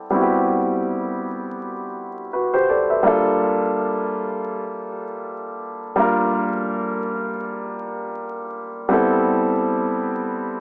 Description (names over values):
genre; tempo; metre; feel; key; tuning
R&B; free time; none; none; G dorian; A4 = 439 Hz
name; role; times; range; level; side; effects
warm upright piano; solo; 0.0-10.6 s; G3 to E5; -19 LUFS; equal; analog delay
room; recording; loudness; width
moderate plate reverb, RT60 2.4 s; worn, warbling old tape, cassette tape, vinyl crackle, warbly pitch drift, small speaker sound; -19 LUFS; side -37 dB against mid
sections
0.0-3.0 A section; 3.0-10.6 B section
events
none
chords
0.0 Am9; 3.0 Gm9; 8.9 Am9